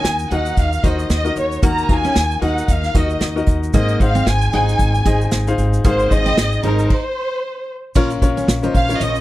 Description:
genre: piano-driven pop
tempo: 114 BPM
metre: 4/4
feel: swing 56% on 16ths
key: unclear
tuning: A4 = 440 Hz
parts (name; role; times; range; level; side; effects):
- dark studio violin section; melody; 0.0-9.2 s; Bb4 to Bb5; -21 LUFS; equal; none
- clear grand piano; accompaniment; 0.0-9.2 s; Ab2 to Gb5; -22 LUFS; left 4 dB; none
- picked steel-string acoustic guitar; riff; 0.0-9.2 s; Bb3 to Ab4; -25 LUFS; right 4 dB; none
- upright bass; bass; 0.0-9.2 s; Ab1 to Eb2; -20 LUFS; equal; none
- unplugged drum kit; drums; 0.0-9.1 s; crash cymbal, hi-hat, kick drum, snare drum; -17 LUFS; equal; none
- egg shaker; percussion; 0.0-9.2 s; none; -39 LUFS; right 9 dB; none
room: little or no reverb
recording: dry, close 1970s-style studio recording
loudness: -15 LUFS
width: side -16 dB against mid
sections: 0.0-8.0 A section; 8.0-9.2 B section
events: stop 6.9-8.0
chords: 0.0 Ebm; 3.7 Ab; 8.0 Bbm

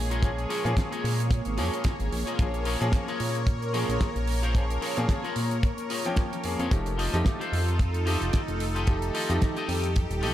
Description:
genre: nu-disco, nu disco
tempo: 111 BPM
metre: 4/4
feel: swing 56% on 16ths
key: Bb dorian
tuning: A4 = 441 Hz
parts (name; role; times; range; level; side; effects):
- lush unison pad; sustained chords; 0.0-10.3 s; Bb3 to Db5; -32 LUFS; right 1 dB; chorus, phaser, sidechain pumping
- chorused synth bass; bass; 0.0-10.3 s; Eb1 to Bb2; -28 LUFS; equal; tube saturation
- clean electric guitar; riff; 0.1-10.3 s; F4 to Eb5; -34 LUFS; left 4 dB; lush chorus, diffuse ambient delay
- damped 70s drum kit; drums; 0.1-10.3 s; hi-hat, snare drum; -36 LUFS; right 2 dB; studio reverb
- bright baby grand piano; accompaniment; 0.2-10.3 s; F3 to G5; -34 LUFS; left 1 dB; diffuse ambient delay
- kick drum; drums; 0.2-10.1 s; none; -24 LUFS; equal; studio reverb
room: light reverb, small room ambience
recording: none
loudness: -24 LUFS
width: side -12 dB against mid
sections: 0.0-10.3 A section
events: none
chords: 0.0 Bbm7; 6.7 F9

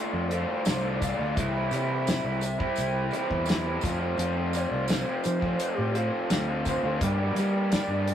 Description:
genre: psychedelic rock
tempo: 85 BPM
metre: 4/4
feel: straight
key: unclear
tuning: A4 = 441 Hz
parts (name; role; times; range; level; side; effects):
- mellow hollow silver concert flute; melody; 0.0-8.1 s; G4 to E5; -34 LUFS; left 1 dB; none
- percussive tonewheel organ; sustained chords; 0.0-8.1 s; F4 to F5; -39 LUFS; right 3 dB; slow rotary speaker
- raw garage guitar; riff; 0.0-8.1 s; F2 to G4; -29 LUFS; equal; overdrive
- fingered electric bass; bass; 0.1-8.1 s; C2 to G3; -30 LUFS; equal; none
- damped 70s drum kit; drums; 0.3-8.1 s; hi-hat, kick drum, snare drum; -29 LUFS; equal; none
- tambourine; percussion; 0.3-7.9 s; none; -44 LUFS; right 7 dB; none
room: wet studio reverb, RT60 0.5 s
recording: rough rehearsal-room recording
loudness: -25 LUFS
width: side -9 dB against mid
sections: 0.0-8.1 A section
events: none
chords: 0.0 Dmadd9; 1.4 C6; 3.8 F; 7.0 Gm7

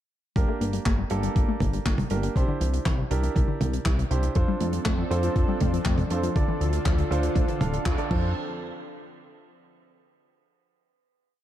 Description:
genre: italo disco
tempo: 120 BPM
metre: 4/4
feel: straight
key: F major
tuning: A4 = 440 Hz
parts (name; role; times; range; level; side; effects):
- analog pluck; arpeggios; 0.4-8.3 s; C3 to Bb3; -32 LUFS; left 4 dB; chorus, cassette tape, ping-pong delay
- clear grand piano; stabs; 0.4-8.3 s; Bb3 to F5; -32 LUFS; right 4 dB; ping-pong delay
- chorused synth bass; bass; 0.4-8.3 s; D1 to F2; -27 LUFS; equal; none
- damped 70s drum kit; drums; 0.4-8.2 s; crash cymbal, handclaps, hi-hat, toms; -33 LUFS; right 2 dB; studio ambience
- electronic kick drum; drums; 0.4-8.2 s; none; -25 LUFS; equal; studio ambience
- lush unison pad; sustained chords; 4.4-8.3 s; D3 to A4; -32 LUFS; equal; chorus
room: light reverb, studio ambience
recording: dark, warm production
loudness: -22 LUFS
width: side -12 dB against mid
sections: 0.4-8.4 verse; 8.4-10.4 final hit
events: filter sweep on synth arpeggio sound 0.4-8.4; band accent 7.9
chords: 0.4 Gm; 2.4 Cadd9; 4.4 F6; 6.4 Dm; 8.1 F6; 8.4 N.C.

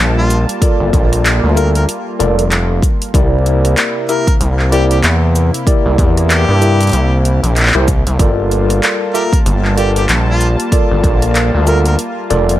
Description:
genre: glitch hop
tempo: 95 BPM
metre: 4/4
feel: swing 59% on 16ths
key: G dorian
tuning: A4 = 440 Hz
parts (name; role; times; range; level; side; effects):
- warm analog pad; sustained chords; 0.0-12.6 s; C3 to A5; -21 LUFS; equal; chorus, sidechain pumping
- gritty driven synth bass; bass; 0.0-12.6 s; F1 to G2; -13 LUFS; equal; none
- clear harmonica; melody; 0.2-11.9 s; F4 to Bb4; -23 LUFS; left 1 dB; ping-pong delay
- drum and bass drum kit; drums; 0.3-12.6 s; handclaps, hi-hat, rim click, shaker; -18 LUFS; equal; overdrive
- tine electric piano; stabs; 0.6-12.5 s; E4 to E5; -18 LUFS; equal; medium stereo tremolo, sidechain pumping, ping-pong delay
- electronic kick drum; drums; 0.6-11.2 s; none; -13 LUFS; equal; none
room: little or no reverb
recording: vinyl crackle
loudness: -10 LUFS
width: side -14 dB against mid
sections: 0.0-12.6 A section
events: none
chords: 0.0 Gm9; 3.1 C7; 8.2 Gm9

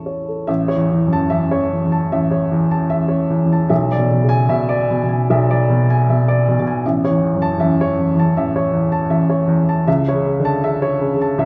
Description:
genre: classical, romantic character piece for solo piano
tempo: 77 BPM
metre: 4/4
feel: uneven beats, rubato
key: A major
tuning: A4 = 440 Hz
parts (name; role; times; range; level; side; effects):
- warm baby grand piano; solo; 0.0-11.5 s; A1 to C#6; -17 LUFS; equal; none
room: wet recital hall reverb, RT60 1.5 s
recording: none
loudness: -17 LUFS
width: mono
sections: 0.5-11.5 A section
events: none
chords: 0.5 A; 3.7 E7/B; 6.8 A; 9.9 A/C#

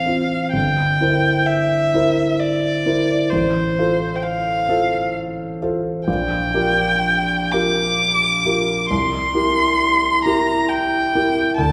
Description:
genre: classical, romantic duo for violin and grand piano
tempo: 66 BPM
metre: 3/4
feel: rubato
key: unclear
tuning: A4 = 440 Hz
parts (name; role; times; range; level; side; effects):
- rich violin; melody; 0.0-11.7 s; C5 to D6; -21 LUFS; equal; none
- warm concert grand piano; accompaniment; 0.0-11.7 s; G1 to C5; -22 LUFS; equal; none
room: wet scoring stage reverb, RT60 1.7 s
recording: heard from further back in the room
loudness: -19 LUFS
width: mono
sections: 0.0-11.7 A section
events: none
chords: 0.0 F/A; 0.5 C7/G; 3.3 F/A; 6.1 Gm7/Bb; 8.9 C7

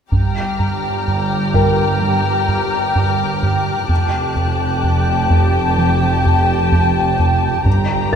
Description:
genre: cinematic, suspense film score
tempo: 64 BPM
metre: 4/4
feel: straight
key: G minor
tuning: A4 = 438 Hz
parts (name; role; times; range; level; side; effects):
- muted symphonic violin section; melody; 0.1-8.2 s; A5 to Bb5; -24 LUFS; left 6 dB; none
- muted symphonic violin section; second line; 0.1-8.2 s; G4 to G5; -20 LUFS; left 1 dB; none
- rubbery square bass; riff; 0.1-8.2 s; F2 to G3; -19 LUFS; right 1 dB; none
- muted symphonic cello section; bass; 0.1-8.2 s; F2 to G2; -22 LUFS; right 1 dB; none
- muted symphonic double bass section; bass; 0.1-8.2 s; F1 to G1; -22 LUFS; right 3 dB; none
- taiko ensemble; drums; 0.1-8.2 s; none; -25 LUFS; left 1 dB; none
- muted symphonic violin section; texture; 0.1-7.2 s; G5 to F6; -28 LUFS; left 4 dB; none
- felt-muted upright piano; texture; 1.5-8.2 s; Bb4 to G5; -25 LUFS; left 2 dB; none
room: wet scoring stage reverb, RT60 2.1 s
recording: minimal, uncompressed stereo recording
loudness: -14 LUFS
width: side -7 dB against mid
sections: 0.1-8.2 A section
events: none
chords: 0.1 Gm; 3.9 Fadd9

